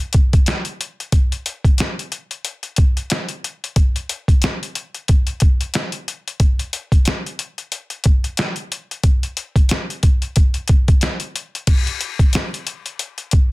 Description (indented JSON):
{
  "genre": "hip hop",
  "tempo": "91 BPM",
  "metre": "4/4",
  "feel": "swing 59% on 16ths",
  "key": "none",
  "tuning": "none",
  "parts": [
    { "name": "boom bap sampler-style drum kit", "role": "drums", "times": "0.1-13.5 s", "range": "crash cymbal, hi-hat, kick drum, snare drum", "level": "-16 LUFS", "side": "equal", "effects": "none" }
  ],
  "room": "light reverb",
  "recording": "dense, heavily limited modern master",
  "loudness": "-16 LUFS",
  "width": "side -22 dB against mid",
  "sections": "0.0-11.7 A section; 11.7-13.5 B section",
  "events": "none",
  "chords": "none"
}